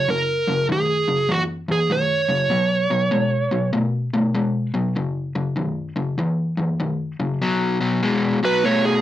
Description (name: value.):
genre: blues.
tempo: 98 BPM.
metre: 4/4.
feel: swing 65% on 8ths.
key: B mixolydian.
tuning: A4 = 439 Hz.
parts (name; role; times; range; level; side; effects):
dark smooth lead guitar; melody; 0.0-3.7, 8.4-9.0 s; F#4 to C#5; -20 LUFS; right 3 dB; overdrive.
overdriven semi-hollow guitar; riff; 0.0-9.0 s; F#2 to A3; -21 LUFS; left 2 dB; none.
room: moderate club reverb, RT60 0.5 s.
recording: none.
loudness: -19 LUFS.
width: side -12 dB against mid.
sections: 0.0-7.4 A section; 7.4-9.0 B section.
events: lead electric guitar solo 7.4-9.0.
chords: 0.0 F#9; 2.5 Bsus2; 5.0 F#5; 7.4 B5.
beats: | 0.09 0.69 1.30 1.91 | 2.52 3.13 3.74 4.35 | 4.96 5.57 6.19 6.80 | 7.41 8.02 8.64.